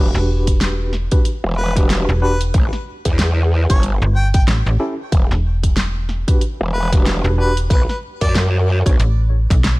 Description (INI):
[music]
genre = glitch hop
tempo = 93 BPM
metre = 4/4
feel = swing 58% on 16ths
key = E dorian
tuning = A4 = 440 Hz
[part]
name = tine electric piano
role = stabs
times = 0.0-9.0 s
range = C#4 to C#5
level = -25 LUFS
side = equal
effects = medium tremolo, sidechain pumping, ping-pong delay
[part]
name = growl bass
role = bass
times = 0.0-9.0 s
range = E1 to F#2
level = -17 LUFS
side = equal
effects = chorus, tube saturation
[part]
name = slap-like FM bass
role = bass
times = 0.1-9.8 s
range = E1 to B1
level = -17 LUFS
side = equal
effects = none
[part]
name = pop drum kit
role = drums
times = 0.2-9.8 s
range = hi-hat, snare drum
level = -24 LUFS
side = equal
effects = studio reverb
[part]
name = electronic kick drum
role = drums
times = 0.5-9.6 s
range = none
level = -16 LUFS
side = equal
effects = studio reverb
[part]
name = clear harmonica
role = melody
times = 1.6-8.3 s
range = B4 to G5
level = -27 LUFS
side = left 1 dB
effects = ping-pong delay
[sound]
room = digital ambience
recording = vinyl crackle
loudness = -14 LUFS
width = side -22 dB against mid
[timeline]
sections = 0.0-9.8 A section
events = none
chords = 0.0 Em7; 2.5 A7(no3); 5.1 Em7; 7.7 B7(no3)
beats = 0.61 1.25 1.90 | 2.54 3.19 3.83 4.48 | 5.12 5.77 6.41 7.06 | 7.70 8.35 8.99 9.64